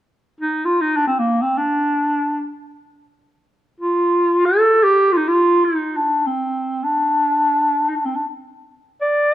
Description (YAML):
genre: Turkish makam ensemble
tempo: free time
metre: none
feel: none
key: D makam kurdi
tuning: A4 = 441 Hz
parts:
  - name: warm clarinet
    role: solo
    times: 0.4-9.3 s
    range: Bb3 to D5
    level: -15 LUFS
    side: equal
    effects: none
room: light reverb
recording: minimal, uncompressed stereo recording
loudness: -16 LUFS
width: side -13 dB against mid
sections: 0.0-9.3 A section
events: none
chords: none